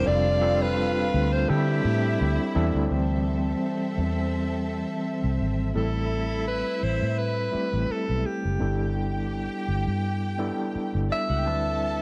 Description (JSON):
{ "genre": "soul", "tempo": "84 BPM", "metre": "4/4", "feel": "swing 54% on 16ths", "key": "unclear", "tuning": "A4 = 440 Hz", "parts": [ { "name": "breathy alto saxophone", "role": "melody", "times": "0.0-12.0 s", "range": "G4 to E5", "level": "-30 LUFS", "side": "equal", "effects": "none" }, { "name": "warm studio violin section", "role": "second line", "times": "0.0-12.0 s", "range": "C4 to A5", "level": "-37 LUFS", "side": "equal", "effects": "none" }, { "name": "overdriven tine electric piano", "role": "accompaniment", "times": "0.0-12.0 s", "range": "E3 to B4", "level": "-31 LUFS", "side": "equal", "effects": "fast tremolo" }, { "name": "vintage muted fingered electric bass", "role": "bass", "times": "0.0-12.0 s", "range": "F1 to D3", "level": "-29 LUFS", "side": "equal", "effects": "none" } ], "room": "light reverb, small room ambience", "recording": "dark, warm production", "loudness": "-26 LUFS", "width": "mono", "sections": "0.0-2.9 A section; 2.9-5.8 B section; 5.8-12.0 C section", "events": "tine electric piano solo 2.9-5.8", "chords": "0.1 F69; 1.5 D9sus4; 5.8 Am7; 8.6 G69; 11.5 D13sus4", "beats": "| 0.06 0.77 1.48 2.19 | 2.90 3.62 4.33 5.04 | 5.75 6.46 7.18 7.89 | 8.60 9.32 10.03 10.74 | 11.46" }